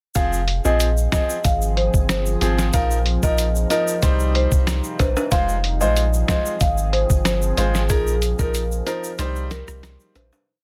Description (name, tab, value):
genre	dancehall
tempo	93 BPM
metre	4/4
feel	straight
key	F minor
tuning	A4 = 440 Hz
part	marimba with medium mallets	melody	0.2-10.3 s	Ab4 to F5	-27 LUFS	equal	none
part	clear grand piano	accompaniment	0.2-10.4 s	F3 to C5	-29 LUFS	equal	none
part	deep dark ambient pad	sustained chords	0.6-10.5 s	F3 to Ab4	-34 LUFS	equal	chorus, built-in reverb, sidechain pumping
part	punchy sub bass	bass	0.2-10.3 s	F1 to C2	-24 LUFS	equal	none
part	lo-fi sampler-style drum kit	drums	0.2-10.3 s	hi-hat, kick drum, rim click, snare drum	-24 LUFS	equal	none
part	tube shaker and timbales	percussion	0.2-10.5 s	none	-32 LUFS	equal	none
room	studio reverb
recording	dense, heavily limited modern master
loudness	-20 LUFS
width	mono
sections	0.2-10.5 chorus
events	fade-out 7.9-10.5; break 9.2-10.5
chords	0.2 Fm; 2.7 Bbsus4; 4.0 Cm; 5.3 Fm; 7.9 Bbsus4; 9.2 Cm